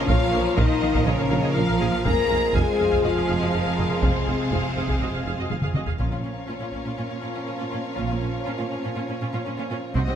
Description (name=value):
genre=cinematic, epic orchestral film score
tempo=122 BPM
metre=4/4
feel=straight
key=Bb minor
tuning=A4 = 441 Hz
part: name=warm symphonic violin section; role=melody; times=0.0-10.2 s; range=C5 to Bb5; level=-33 LUFS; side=left 1 dB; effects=none
part: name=warm symphonic violin section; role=second line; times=0.0-10.1 s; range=Db4 to Db5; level=-34 LUFS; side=left 3 dB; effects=none
part: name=mellow French horn section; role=sustained chords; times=0.0-10.2 s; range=C4 to Bb4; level=-28 LUFS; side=left 5 dB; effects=none
part: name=warm symphonic string section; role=sustained chords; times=0.0-10.2 s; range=Bb3 to F5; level=-33 LUFS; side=left 1 dB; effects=none
part: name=warm trombone section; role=sustained chords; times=0.0-10.2 s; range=Bb2 to Bb3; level=-32 LUFS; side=right 3 dB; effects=none
part: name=rich symphonic cello section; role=bass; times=0.0-10.1 s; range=Bb2 to Bb3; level=-29 LUFS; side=right 2 dB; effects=none
part: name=rich symphonic viola section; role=accompaniment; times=0.1-10.1 s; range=C4 to F5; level=-33 LUFS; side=right 1 dB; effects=none
part: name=dark tuba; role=bass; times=0.1-5.8 s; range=F1 to Bb1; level=-31 LUFS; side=right 4 dB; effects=none
part: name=warm studio double bass section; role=bass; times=0.1-10.1 s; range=F1 to C2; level=-28 LUFS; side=right 3 dB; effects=none
part: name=taiko ensemble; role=drums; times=0.1-7.0, 10.0-10.2 s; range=none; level=-26 LUFS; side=equal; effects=none
part: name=timpani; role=percussion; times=6.0-6.7 s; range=Bb2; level=-34 LUFS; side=left 1 dB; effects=none
room=moderate scoring stage reverb, RT60 1.7 s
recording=none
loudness=-21 LUFS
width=side -9 dB against mid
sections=0.0-6.0 A section; 6.0-10.2 B section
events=drum fill 5.5-6.0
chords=0.0 Bbm; 2.1 Fm; 6.0 Bbm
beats=| 0.09 0.58 1.07 1.56 | 2.06 2.55 3.04 3.53 | 4.03 4.52 5.01 5.50 | 6.00 6.49 6.99 7.48 | 7.98 8.47 8.96 9.46 | 9.95